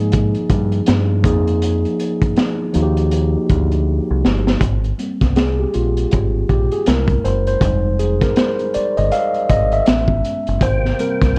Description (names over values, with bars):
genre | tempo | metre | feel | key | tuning
R&B, neo-soul | 80 BPM | 4/4 | swing 60% on 16ths | F dorian | A4 = 440 Hz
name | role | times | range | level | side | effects
mellow tine electric piano | accompaniment | 0.0-11.4 s | F3 to F5 | -21 LUFS | equal | none
deep dub fingered electric bass | bass | 0.0-11.4 s | F1 to Ab2 | -21 LUFS | equal | none
crunchy breakbeat drum kit | drums | 0.1-11.4 s | hi-hat, kick drum, snare drum | -21 LUFS | equal | none
tonewheel organ | sustained chords | 10.6-11.4 s | C3 to G5 | -28 LUFS | equal | fast rotary speaker, chorus vibrato
room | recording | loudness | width
little or no reverb | worn, warbling old tape, cassette tape, warbly pitch drift | -17 LUFS | mono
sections
0.0-4.6 A section; 4.6-11.4 B section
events
drum fill 3.9-4.6; tine electric piano solo 4.6-11.4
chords
0.0 Fm9; 1.2 Fm7; 4.6 Abmaj9; 6.9 Caug7; 7.6 Fm7; 9.9 Amaj9; 10.6 Abmaj9